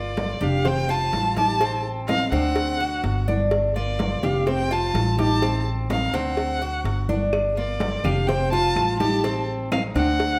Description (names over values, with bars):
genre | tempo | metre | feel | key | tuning
latin, Cuban son and guajira | 126 BPM | 4/4 | straight | G minor | A4 = 444 Hz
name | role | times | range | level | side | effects
warm violin | melody | 0.0-10.4 s | D5 to A5 | -28 LUFS | equal | none
nylon-string guitar | second line | 0.0-10.4 s | Bb3 to F4 | -31 LUFS | equal | none
Cuban tres | arpeggios | 0.0-10.4 s | C4 to C5 | -30 LUFS | equal | none
upright bass | bass | 0.0-10.4 s | F1 to D2 | -28 LUFS | equal | none
congas | percussion | 0.2-10.4 s | none | -32 LUFS | equal | none
cowbell | percussion | 0.2-10.4 s | none | -34 LUFS | equal | none
claves | percussion | 7.3-10.0 s | none | -41 LUFS | equal | none
room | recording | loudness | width
moderate large studio reverb, RT60 1.4 s | none | -23 LUFS | mono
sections
0.0-10.4 A section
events
none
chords
0.0 Gm7; 0.7 Fadd9; 1.6 Adim; 2.6 D7; 3.5 Gm7; 4.5 Fadd9; 5.4 Adim; 6.4 D7; 7.3 Gm7; 8.3 Fadd9; 9.2 Adim